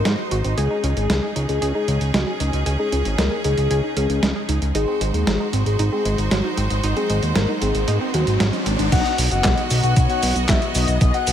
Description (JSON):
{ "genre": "italo disco", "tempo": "115 BPM", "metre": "4/4", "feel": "straight", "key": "G# minor", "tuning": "A4 = 440 Hz", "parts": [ { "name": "soft octave-layered synth lead", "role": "melody", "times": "0.0-11.3 s", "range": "F#4 to F#5", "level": "-25 LUFS", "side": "left 3 dB", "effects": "chorus, digital delay" }, { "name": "bright studio string section", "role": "sustained chords", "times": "0.0-11.3 s", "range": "G#3 to D#5", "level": "-28 LUFS", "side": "right 1 dB", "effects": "none" }, { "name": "fat analog bass", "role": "bass", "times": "0.0-11.3 s", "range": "F#1 to G#2", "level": "-21 LUFS", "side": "equal", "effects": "none" }, { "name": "analog pluck", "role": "arpeggios", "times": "0.1-8.8 s", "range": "F#3 to G#4", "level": "-29 LUFS", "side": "right 4 dB", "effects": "chorus, cassette tape, digital delay" }, { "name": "dusty soul sampler-style drum kit", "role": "drums", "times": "0.1-11.3 s", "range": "cabasa, crash cymbal, handclaps, hi-hat, snare drum", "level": "-24 LUFS", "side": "right 1 dB", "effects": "overdrive" }, { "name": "riser", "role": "sound effects", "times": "6.5-8.9 s", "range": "none", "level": "-29 LUFS", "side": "left 2 dB", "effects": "none" }, { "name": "mellow synth brass", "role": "stabs", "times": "8.9-11.2 s", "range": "B3 to F#5", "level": "-26 LUFS", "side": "left 3 dB", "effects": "chorus, digital delay" }, { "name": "electronic kick drum", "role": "drums", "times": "8.9-11.1 s", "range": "none", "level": "-19 LUFS", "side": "equal", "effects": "overdrive" } ], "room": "light reverb, digital ambience", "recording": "none", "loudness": "-18 LUFS", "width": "side -10 dB against mid", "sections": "0.0-8.9 A section; 8.9-11.3 B section", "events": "riser 6.5-8.9", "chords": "0.0 G#7; 0.6 C#sus2; 4.8 G#7; 8.9 B" }